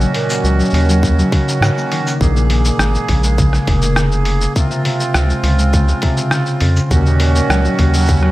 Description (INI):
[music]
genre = folktronica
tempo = 102 BPM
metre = 4/4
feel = straight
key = unclear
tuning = A4 = 443 Hz
[part]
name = accordion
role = sustained chords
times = 0.0-8.3 s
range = Eb3 to Ab4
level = -20 LUFS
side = right 3 dB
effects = none
[part]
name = concert harp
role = arpeggios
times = 0.0-8.3 s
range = Bb2 to Db4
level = -18 LUFS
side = left 1 dB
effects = vintage 12-bit sampler grit, digital delay
[part]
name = round analog bass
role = bass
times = 0.0-8.3 s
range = F1 to Ab2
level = -14 LUFS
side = equal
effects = none
[part]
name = lo-fi sampler-style drum kit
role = drums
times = 0.0-8.3 s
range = hi-hat, rim click, shaker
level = -22 LUFS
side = left 1 dB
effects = none
[part]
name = electronic kick drum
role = drums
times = 1.0-8.2 s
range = none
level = -17 LUFS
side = equal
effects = none
[sound]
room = light reverb, digital ambience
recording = vinyl crackle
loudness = -12 LUFS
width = side -17 dB against mid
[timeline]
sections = 0.0-8.3 A section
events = none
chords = 0.0 Ebm7; 2.2 Bbm7; 4.6 Dbmaj7; 6.9 Ebm7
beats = 0.44 1.03 1.62 | 2.21 2.79 3.38 3.97 | 4.56 5.15 5.74 6.32 | 6.91 7.50 8.09